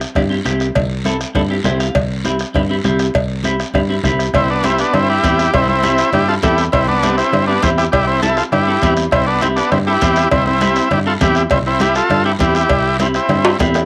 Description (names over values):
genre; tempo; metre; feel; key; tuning
latin, cumbia; 201 BPM; 4/4; straight; C major; A4 = 440 Hz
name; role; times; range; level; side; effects
fingered electric bass; bass; 0.0-13.8 s; C2 to G2; -22 LUFS; equal; none
bombo; percussion; 0.0-13.9 s; none; -26 LUFS; equal; none
guiro; percussion; 0.0-13.9 s; none; -32 LUFS; equal; none
clean electric guitar; accompaniment; 0.2-13.8 s; C4 to F5; -23 LUFS; equal; cassette tape, plate reverb
congas; percussion; 0.2-13.7 s; none; -28 LUFS; equal; none
cowbell and timbales; percussion; 0.2-13.8 s; none; -22 LUFS; equal; none
combo organ; melody; 4.4-13.6 s; B3 to A4; -18 LUFS; equal; cassette tape, plate reverb
room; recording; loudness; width
wet small room reverb, RT60 0.5 s; home recording on cassette; -15 LUFS; mono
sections
0.0-4.3 A section; 4.3-13.9 B section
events
clean electric guitar fill 1.5-2.0; drum fill 13.4-13.9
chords
0.0 C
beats
0.16 0.46 | 0.76 1.06 1.35 1.65 | 1.95 2.25 2.55 2.85 | 3.15 3.44 3.74 4.04 | 4.34 4.64 4.94 5.24 | 5.54 5.83 6.13 6.43 | 6.73 7.03 7.33 7.63 | 7.93 8.22 8.52 8.82 | 9.12 9.42 9.72 10.02 | 10.32 10.62 10.91 11.21 | 11.51 11.81 12.11 12.40 | 12.70 13.00 13.30 13.60